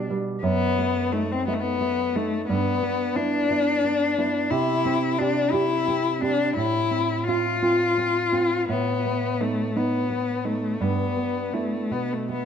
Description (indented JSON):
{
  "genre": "romantic duo for cello and classical guitar",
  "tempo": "58 BPM (dotted quarters)",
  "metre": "12/8",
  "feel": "rubato",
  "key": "E minor",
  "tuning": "A4 = 440 Hz",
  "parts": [
    { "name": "rich cello", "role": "melody", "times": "0.0-12.4 s", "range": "A3 to F4", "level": "-24 LUFS", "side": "left 4 dB", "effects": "none" },
    { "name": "nylon-string guitar", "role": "accompaniment", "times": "0.0-12.4 s", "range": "F#2 to G4", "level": "-26 LUFS", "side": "right 4 dB", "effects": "none" }
  ],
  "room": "moderate recital hall reverb, RT60 1.7 s",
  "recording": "none",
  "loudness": "-21 LUFS",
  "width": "side -8 dB against mid",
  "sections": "0.0-12.4 A section",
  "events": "none",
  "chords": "0.4 B7/F#; 2.5 Em/G; 4.5 C; 6.6 F/A; 8.7 B7/A; 10.8 Em/G; 11.9 B7(no3)"
}